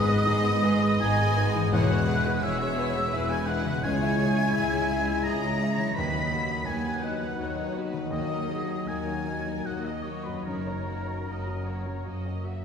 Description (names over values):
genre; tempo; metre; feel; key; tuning
cinematic; 73-87 BPM; 3/4; rubato; C# dorian; A4 = 440 Hz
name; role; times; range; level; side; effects
bright symphonic violin section; melody; 0.0-12.0 s; A#4 to B5; -38 LUFS; left 4 dB; none
clear symphonic violin section; second line; 0.0-12.6 s; A#3 to C#5; -38 LUFS; left 3 dB; none
hollow concert flute; second line; 0.0-12.0 s; A#5 to B6; -33 LUFS; equal; none
warm oboe; second line; 0.0-12.0 s; A#4 to B5; -35 LUFS; equal; none
clear symphonic viola section; accompaniment; 0.0-12.6 s; A#3 to E5; -36 LUFS; equal; none
felt-muted upright piano; accompaniment; 0.0-12.6 s; C#2 to E5; -35 LUFS; left 1 dB; none
mellow French horn section; sustained chords; 0.0-12.5 s; F#3 to E4; -33 LUFS; left 4 dB; none
concert harp; arpeggios; 0.0-12.6 s; F#2 to E5; -36 LUFS; left 2 dB; none
rich symphonic cello section; bass; 0.0-12.6 s; C#2 to G#2; -32 LUFS; right 2 dB; none
rich symphonic double bass section; bass; 0.0-12.6 s; E1 to D#2; -32 LUFS; right 1 dB; none
timpani; percussion; 0.0-0.6 s; G#2; -37 LUFS; left 3 dB; none
room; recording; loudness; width
wet recital hall reverb, RT60 1.6 s; heard from further back in the room; -24 LUFS; side -7 dB against mid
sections
0.0-12.6 A section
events
none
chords
0.0 G#m; 1.7 Eadd9; 3.8 C#m; 6.0 B/D#; 8.1 D#m; 10.5 F#